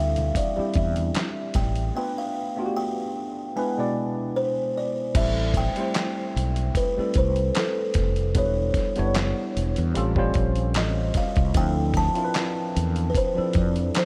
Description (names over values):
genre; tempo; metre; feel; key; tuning
R&B, neo-soul; 75 BPM; 4/4; swing 54% on 16ths; A minor; A4 = 442 Hz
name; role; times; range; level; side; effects
buzzing kalimba; melody; 0.0-14.1 s; A4 to A5; -30 LUFS; equal; analog delay
tine electric piano; accompaniment; 0.0-14.1 s; B2 to D5; -31 LUFS; equal; analog chorus
mellow fretless electric bass; bass; 0.0-13.9 s; E1 to F2; -27 LUFS; equal; none
dusty soul sampler-style drum kit; drums; 0.2-14.1 s; crash cymbal, handclaps, hi-hat, kick drum, snare drum; -29 LUFS; equal; none
congas; percussion; 0.2-1.8 s; none; -39 LUFS; equal; none
room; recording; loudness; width
light reverb, digital ambience; none; -24 LUFS; mono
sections
0.0-5.2 A section; 5.2-14.1 A section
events
none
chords
0.0 C69; 1.9 Bm7b5; 3.5 E7; 5.2 Am7; 8.3 Em7; 9.9 A7alt; 11.6 Dm9